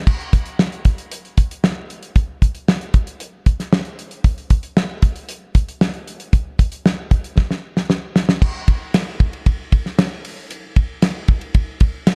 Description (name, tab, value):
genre	pop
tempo	115 BPM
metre	4/4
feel	straight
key	none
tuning	none
part	damped 70s drum kit	drums	0.1-12.2 s	crash cymbal, hi-hat, kick drum, ride cymbal, snare drum	-18 LUFS	equal	none
room	little or no reverb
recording	dark, warm production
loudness	-19 LUFS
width	mono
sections	0.1-8.4 A section; 8.4-12.2 B section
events	drum fill 7.4-8.4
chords	none